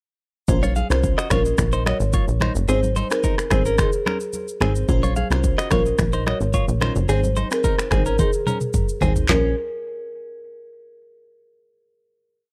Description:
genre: afrobeats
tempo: 109 BPM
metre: 4/4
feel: straight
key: Bb minor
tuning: A4 = 440 Hz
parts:
  - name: crystalline FM electric piano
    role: accompaniment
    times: 0.5-9.5 s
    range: C4 to C5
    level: -30 LUFS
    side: equal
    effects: chorus
  - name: plucky analog bass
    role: bass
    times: 0.5-9.5 s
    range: Gb1 to C2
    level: -24 LUFS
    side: equal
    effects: none
  - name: afro-pop drum kit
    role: drums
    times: 0.5-9.4 s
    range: finger snaps, handclaps, kick drum, rim click, shaker, snare drum, toms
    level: -25 LUFS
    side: equal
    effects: none
  - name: direct-recorded clean electric guitar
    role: riff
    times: 0.6-9.5 s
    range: C4 to F5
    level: -30 LUFS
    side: equal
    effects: tape echo
  - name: congas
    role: percussion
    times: 0.6-9.5 s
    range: none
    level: -33 LUFS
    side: equal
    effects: none
  - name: marimba with soft mallets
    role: melody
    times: 0.9-9.6 s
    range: Ab4 to Db5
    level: -28 LUFS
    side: equal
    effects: none
room: little or no reverb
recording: dry, gritty hardware recording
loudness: -21 LUFS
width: mono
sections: 0.5-9.3 verse; 9.3-11.5 final chord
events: drum fill 8.2-9.3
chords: 0.5 Bbmadd9; 2.7 Ab; 4.9 Bbmadd9; 7.1 Ab; 9.3 Bbmadd9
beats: | 0.48 1.03 1.58 2.13 | 2.69 3.24 3.79 4.34 | 4.89 5.44 5.99 6.54 | 7.09 7.64 8.19 8.74 | 9.29

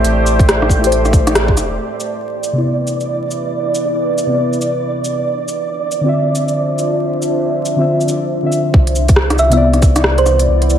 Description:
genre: future garage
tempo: 138 BPM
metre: 4/4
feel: swing 62% on 16ths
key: unclear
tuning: A4 = 441 Hz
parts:
  - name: muted felt-like synth keys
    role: accompaniment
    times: 0.0-10.8 s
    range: C3 to E5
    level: -19 LUFS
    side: left 2 dB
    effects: chorus, sidechain pumping, low-pass filter, tape echo
  - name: deep dark ambient pad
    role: sustained chords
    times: 0.0-10.8 s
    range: A3 to E5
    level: -20 LUFS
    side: equal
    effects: chorus, built-in reverb, vintage 12-bit sampler grit, sidechain pumping
  - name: warm sub bass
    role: bass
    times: 0.0-1.8, 8.7-10.8 s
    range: E1 to C2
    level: -16 LUFS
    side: equal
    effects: sidechain pumping
  - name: organic electronic drum kit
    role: drums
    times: 0.0-10.8 s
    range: cabasa, hi-hat, rim click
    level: -18 LUFS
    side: equal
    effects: none
  - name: flickering grainy texture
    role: texture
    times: 0.0-8.8 s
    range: D5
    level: -23 LUFS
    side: right 6 dB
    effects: built-in reverb
  - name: electronic kick drum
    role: drums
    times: 0.4-1.6, 8.7-9.9 s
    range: none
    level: -11 LUFS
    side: equal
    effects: none
  - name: thumb-piano-like synth pluck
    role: melody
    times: 9.4-10.4 s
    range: C5 to E5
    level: -15 LUFS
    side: right 2 dB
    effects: chorus, vintage 12-bit sampler grit, tape echo
room: wet recital hall reverb, RT60 1.7 s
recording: vinyl crackle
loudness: -12 LUFS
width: side -10 dB against mid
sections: 0.0-1.8 A section; 1.8-8.7 B section; 8.7-10.8 A section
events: band accent 1.4; filter sweep on synth keys 1.8-8.7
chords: 0.0 Am7; 1.8 Cmaj9; 5.3 Dm9; 8.7 Cmaj9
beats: | 0.05 0.48 0.92 1.35 | 1.78 2.22 2.65 3.09 | 3.52 3.96 4.39 4.83 | 5.26 5.70 6.13 6.57 | 7.00 7.44 7.87 8.31 | 8.74 9.18 9.61 10.05 | 10.48

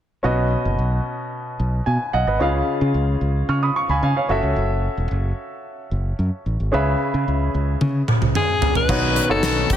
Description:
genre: 1980s-style pop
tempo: 111 BPM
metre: 4/4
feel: straight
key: B mixolydian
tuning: A4 = 440 Hz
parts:
  - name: clear baby grand piano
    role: accompaniment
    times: 0.2-9.8 s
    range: B2 to E#6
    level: -22 LUFS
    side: equal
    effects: none
  - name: modern bright fingered electric bass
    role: bass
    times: 0.2-9.6 s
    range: E1 to C#3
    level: -21 LUFS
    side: equal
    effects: none
  - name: gated 80s drum kit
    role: drums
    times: 7.8-9.8 s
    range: crash cymbal, hi-hat, kick drum, snare drum, toms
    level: -20 LUFS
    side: right 1 dB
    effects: none
  - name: edgy alto saxophone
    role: melody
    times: 8.4-9.8 s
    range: G#4 to B4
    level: -20 LUFS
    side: left 4 dB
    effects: none
  - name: brassy analog pad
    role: sustained chords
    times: 8.9-9.8 s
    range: D#3 to C#4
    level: -29 LUFS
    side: left 1 dB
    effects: none
room: light reverb, small room ambience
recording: none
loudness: -18 LUFS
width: side -10 dB against mid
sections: 0.2-8.9 A section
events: drum fill 7.8-8.9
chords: 0.2 Badd9; 2.4 C#; 4.3 F#m7; 6.7 C#m7; 8.9 Badd9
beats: | 0.24 0.79 1.32 1.87 | 2.41 2.95 3.49 4.03 | 4.57 5.11 5.65 6.19 | 6.73 7.27 7.81 8.35 | 8.89 9.43

